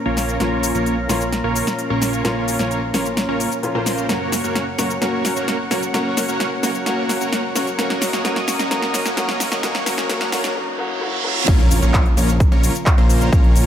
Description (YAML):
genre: EDM, festival progressive house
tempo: 130 BPM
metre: 4/4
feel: straight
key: Bb minor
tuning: A4 = 438 Hz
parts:
  - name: warm grand piano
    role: accompaniment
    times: 0.0-11.5 s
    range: Bb2 to Gb4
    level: -25 LUFS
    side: left 2 dB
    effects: sidechain pumping, tape echo
  - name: lush unison pad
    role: sustained chords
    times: 0.0-13.7 s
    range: Db3 to Eb6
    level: -27 LUFS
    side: right 1 dB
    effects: chorus, sidechain pumping
  - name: dense compressed supersaw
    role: riff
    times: 0.1-13.6 s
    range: Bb3 to Db5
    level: -22 LUFS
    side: right 1 dB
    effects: sidechain pumping, low-pass filter, tape echo
  - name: fat analog bass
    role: bass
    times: 0.1-13.6 s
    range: Eb1 to Bb1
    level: -24 LUFS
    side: equal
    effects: sidechain pumping
  - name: big-room dance drum kit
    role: drums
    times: 0.2-13.7 s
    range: crash cymbal, handclaps, hi-hat, shaker, snare drum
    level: -24 LUFS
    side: equal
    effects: overdrive
  - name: riser, reverse cymbal and impact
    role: sound effects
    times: 9.1-13.3 s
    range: none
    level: -27 LUFS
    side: right 1 dB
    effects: none
  - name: electronic kick drum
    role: drums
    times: 11.5-13.4 s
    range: none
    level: -14 LUFS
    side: equal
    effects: overdrive
room: light reverb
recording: high-pass filter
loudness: -17 LUFS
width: side -10 dB against mid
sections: 0.0-11.5 A section; 11.5-13.7 B section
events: build-up 0.0-11.5; drum fill 0.0-10.6; filter sweep on supersaw synth 0.0-11.5; filter sweep 0.0-11.5; reverse cymbal 10.6-11.5; drop 11.5-13.7; impact 11.5-13.3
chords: 0.0 Bbm; 4.1 Gb; 7.8 Ebm; 11.5 Bbm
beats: | 0.40 0.86 1.32 1.79 | 2.25 2.71 3.17 3.63 | 4.09 4.56 5.02 5.48 | 5.94 6.40 6.86 7.33 | 7.79 8.25 8.71 9.17 | 9.63 10.09 10.56 11.02 | 11.48 11.94 12.40 12.86 | 13.32